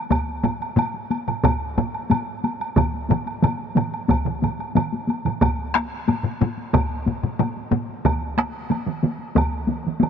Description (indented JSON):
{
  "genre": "japanese traditional, taiko drum ensemble",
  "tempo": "91 BPM",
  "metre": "4/4",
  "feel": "straight",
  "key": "none",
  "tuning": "none",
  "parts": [
    { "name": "solo taiko drums", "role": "percussion", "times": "0.1-9.5 s", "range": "none", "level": "-24 LUFS", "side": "right 2 dB", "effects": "none" },
    { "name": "taiko ensemble", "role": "percussion", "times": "0.1-10.1 s", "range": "none", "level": "-25 LUFS", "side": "left 3 dB", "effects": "none" },
    { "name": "woodblock", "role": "percussion", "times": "0.1-10.1 s", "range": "none", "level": "-29 LUFS", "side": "right 3 dB", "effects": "none" },
    { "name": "taiko ensemble", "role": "percussion", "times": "0.4-7.9 s", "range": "none", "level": "-25 LUFS", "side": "left 2 dB", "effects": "none" },
    { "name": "taiko ensemble", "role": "percussion", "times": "2.8-10.1 s", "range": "none", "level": "-26 LUFS", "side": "right 6 dB", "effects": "none" }
  ],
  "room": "light reverb",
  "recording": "nothing above 7.8 kHz",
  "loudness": "-20 LUFS",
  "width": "side -7 dB against mid",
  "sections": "0.0-5.4 A section; 5.4-10.1 B section",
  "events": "none",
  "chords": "none",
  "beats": "| 0.11 0.77 1.44 2.10 | 2.77 3.43 4.10 4.76 | 5.42 6.08 6.74 7.40 | 8.05 8.71 9.37 10.02"
}